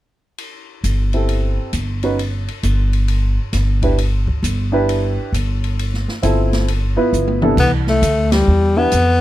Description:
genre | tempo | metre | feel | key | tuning
jazz, small-group swing and bop | 134 BPM | 4/4 | swing 66% on 8ths | unclear | A4 = 438 Hz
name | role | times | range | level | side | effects
open jazz drum kit | drums | 0.4-9.0 s | crash cymbal, hi-hat, kick drum, ride cymbal, snare drum, toms | -25 LUFS | equal | none
upright bass | bass | 0.8-9.2 s | G1 to F2 | -17 LUFS | equal | none
warm baby grand piano | accompaniment | 1.1-8.9 s | C3 to B4 | -19 LUFS | right 1 dB | none
clear tenor saxophone | melody | 7.6-9.2 s | G3 to B3 | -15 LUFS | left 2 dB | none
room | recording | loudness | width
little or no reverb | close, detailed microphones | -15 LUFS | side -14 dB against mid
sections
0.4-7.6 A section; 7.6-9.2 B section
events
drum fill 7.1-7.6; band accent 8.2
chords
0.4 Gsus2; 2.2 G6; 5.8 G13sus4; 6.7 G13; 7.6 Cmaj9

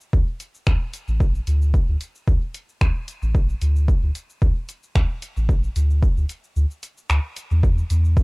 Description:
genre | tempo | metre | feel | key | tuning
dub techno | 112 BPM | 4/4 | swing 54% on 16ths | unclear | A4 = 437 Hz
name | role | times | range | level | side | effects
deep house drum kit | drums | 0.0-8.2 s | finger snaps, hi-hat, shaker | -31 LUFS | equal | none
soft dub sub bass | bass | 0.1-8.2 s | A1 to E2 | -20 LUFS | equal | sidechain pumping
electronic kick drum | drums | 0.1-8.2 s | none | -18 LUFS | equal | none
room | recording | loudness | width
little or no reverb | dry, gritty hardware recording, cassette tape | -19 LUFS | side -31 dB against mid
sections
0.0-8.2 A section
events
kick drops out 6.6-7.6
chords
none

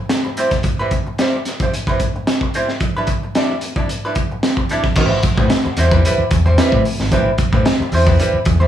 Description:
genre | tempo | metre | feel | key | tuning
funk | 111 BPM | 4/4 | straight | A minor | A4 = 441 Hz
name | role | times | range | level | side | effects
archtop guitar, miked and amplified | accompaniment | 0.0-8.7 s | G3 to D5 | -20 LUFS | right 1 dB | wah, plate reverb
crunchy breakbeat drum kit | drums | 0.1-8.6 s | crash cymbal, hi-hat, kick drum, snare drum | -17 LUFS | equal | none
overdriven fingered electric bass | bass | 5.0-8.7 s | G#1 to A2 | -16 LUFS | equal | none
room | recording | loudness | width
light reverb | studio reverb | -14 LUFS | side -10 dB against mid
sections
0.0-5.0 A section; 5.0-8.7 B section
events
none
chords
0.0 Cmaj7/G; 2.8 Em7; 5.0 Am9

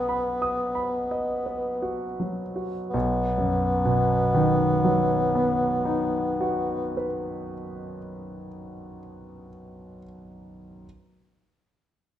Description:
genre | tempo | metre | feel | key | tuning
classical, romantic duo for bassoon and grand piano | 40-45 BPM | 4/4 | rubato | B major | A4 = 439 Hz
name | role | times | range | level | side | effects
mellow bassoon | melody | 0.0-7.0 s | B3 | -26 LUFS | left 1 dB | none
warm concert grand piano | accompaniment | 0.0-10.9 s | B1 to D#6 | -27 LUFS | equal | none
room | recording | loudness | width
moderate recital hall reverb, RT60 1.3 s | close, detailed microphones | -22 LUFS | side -11 dB against mid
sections
0.0-2.9 A section; 2.9-8.6 B section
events
slowing down 0.0-2.9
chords
0.0 B

